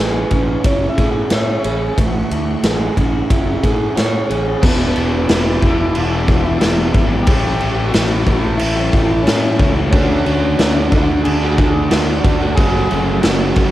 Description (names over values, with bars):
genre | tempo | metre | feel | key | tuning
rock, shoegaze and dream pop | 91 BPM | 4/4 | straight | unclear | A4 = 445 Hz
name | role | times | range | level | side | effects
electric guitar through a small old amp | melody | 0.0-13.7 s | B3 to F#5 | -22 LUFS | equal | spring reverb, analog delay
ensemble organ-string | sustained chords | 0.0-13.7 s | A3 to E6 | -32 LUFS | equal | none
overdriven semi-hollow guitar | riff | 0.0-4.6, 9.9-13.7 s | D3 to C#5 | -21 LUFS | right 6 dB | reverse reverb, cassette tape
raw garage guitar | riff | 0.0-13.7 s | A2 to C#5 | -24 LUFS | left 7 dB | overdrive, wide subtle chorus, cassette tape
fuzz fingered electric bass | bass | 0.0-13.7 s | E1 to A2 | -20 LUFS | equal | overdrive
huge arena drum kit | drums | 0.3-13.7 s | crash cymbal, kick drum, ride cymbal, snare drum | -17 LUFS | equal | cassette tape
tight distorted guitar | riff | 4.6-13.7 s | E2 to D4 | -21 LUFS | right 1 dB | distortion, cassette tape
room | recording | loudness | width
little or no reverb | home recording on cassette | -13 LUFS | side -14 dB against mid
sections
0.0-4.6 A section; 4.6-13.7 B section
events
none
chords
0.0 Amaj7; 4.6 E5; 7.3 A7; 9.9 Dmaj7; 12.6 F#m7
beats
0.65 1.31 | 1.98 2.64 3.31 3.97 | 4.63 5.29 5.96 6.62 | 7.28 7.94 8.60 9.27 | 9.93 10.59 11.25 11.91 | 12.57 13.24